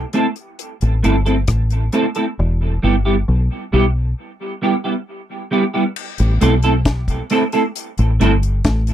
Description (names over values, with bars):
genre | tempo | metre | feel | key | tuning
dub reggae | 67 BPM | 4/4 | straight | A minor | A4 = 440 Hz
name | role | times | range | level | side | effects
deep dub fingered electric bass | bass | 0.0-8.9 s | E1 to B1 | -16 LUFS | equal | none
semi-hollow electric guitar | accompaniment | 0.1-8.3 s | G3 to A4 | -18 LUFS | right 2 dB | ensemble chorus, low-pass filter, dub echo
deep reggae drum kit | drums | 0.1-8.9 s | crash cymbal, hi-hat, kick drum, rim click, snare drum | -22 LUFS | left 1 dB | none
room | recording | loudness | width
little or no reverb | dry, close 1970s-style studio recording | -15 LUFS | side -11 dB against mid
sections
0.0-6.0 A section; 6.0-8.9 B section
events
part muted 2.4-6.0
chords
0.0 Am; 2.4 Em; 6.0 Am